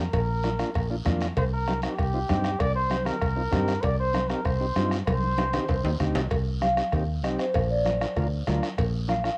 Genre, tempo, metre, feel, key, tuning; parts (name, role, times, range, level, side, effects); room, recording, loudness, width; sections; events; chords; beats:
latin, cumbia; 194 BPM; 4/4; straight; C minor; A4 = 437 Hz
bright trombone; second line; 0.0-6.0 s; G4 to D5; -32 LUFS; equal; cassette tape
combo organ; accompaniment; 0.0-9.3 s; Bb3 to Bb4; -34 LUFS; equal; cassette tape
fingered electric bass; bass; 0.0-9.3 s; Bb1 to G2; -30 LUFS; equal
bombo; percussion; 0.1-9.4 s; -34 LUFS; equal
congas; percussion; 0.1-9.2 s; -37 LUFS; equal
cowbell and timbales; percussion; 0.1-8.9 s; -38 LUFS; equal
guiro; percussion; 0.1-9.4 s; -46 LUFS; equal
marimba with soft mallets; melody; 6.6-9.4 s; C5 to F5; -30 LUFS; equal; cassette tape
moderate studio reverb, RT60 0.6 s; home recording on cassette; -26 LUFS; mono
0.0-6.3 A section; 6.3-9.4 B section
trombone solo 0.0-6.3; drum fill 5.1-6.3; marimba solo 6.3-9.4
0.0 Bb; 1.4 Cm; 7.5 Bb
| 0.13 0.44 0.75 1.06 | 1.37 1.68 1.99 2.29 | 2.60 2.91 3.22 3.53 | 3.84 4.15 4.46 4.76 | 5.07 5.38 5.69 6.00 | 6.31 6.62 6.93 7.24 | 7.55 7.86 8.17 8.48 | 8.79 9.10